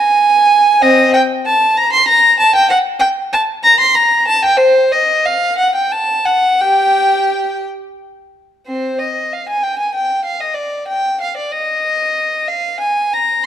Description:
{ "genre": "classical, baroque-style suite movement for unaccompanied violin", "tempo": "57-65 BPM (dotted quarters)", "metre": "6/8", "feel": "rubato", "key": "G minor", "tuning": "A4 = 439 Hz", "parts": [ { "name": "rich violin", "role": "solo", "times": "0.0-13.5 s", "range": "C4 to C6", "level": "-11 LUFS", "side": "equal", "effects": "none" } ], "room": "moderate recital hall reverb, RT60 1.5 s", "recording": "dark, warm production", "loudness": "-11 LUFS", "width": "side -10 dB against mid", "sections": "0.0-8.7 A section; 8.7-13.5 A section", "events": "none", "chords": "none" }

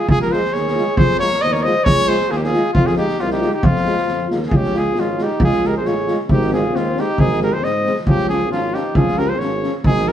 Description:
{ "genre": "balkan folk, Balkan brass band", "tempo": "135 BPM", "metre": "2/4", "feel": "straight", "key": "unclear", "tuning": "A4 = 440 Hz", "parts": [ { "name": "clear trumpet", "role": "melody", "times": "0.0-10.1 s", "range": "F4 to Eb5", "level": "-20 LUFS", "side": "left 1 dB", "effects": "none" }, { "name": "mellow flugelhorn", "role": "second line", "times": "0.0-10.1 s", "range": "C4 to C5", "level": "-24 LUFS", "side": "right 2 dB", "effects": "none" }, { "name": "warm tuba", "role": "bass", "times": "0.1-10.1 s", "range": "Ab1 to Ab2", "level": "-23 LUFS", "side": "equal", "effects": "none" }, { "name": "street-band drum kit", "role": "percussion", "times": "0.1-10.1 s", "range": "kick drum, snare drum", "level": "-19 LUFS", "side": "equal", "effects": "none" }, { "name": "clear euphonium", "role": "accompaniment", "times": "0.3-10.1 s", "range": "F3 to Ab3", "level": "-27 LUFS", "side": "right 2 dB", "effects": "none" }, { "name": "mellow French horn", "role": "accompaniment", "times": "0.3-10.1 s", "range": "C4 to F4", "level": "-25 LUFS", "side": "left 3 dB", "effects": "none" } ], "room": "moderate studio reverb, RT60 0.9 s", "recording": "band playing live in one room", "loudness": "-15 LUFS", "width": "side -10 dB against mid", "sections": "0.0-4.5 A section; 4.5-10.1 B section", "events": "none", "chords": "0.1 Db; 1.0 Fm; 1.9 Db; 2.8 Fm; 4.5 Db; 6.3 Ab; 8.1 Db" }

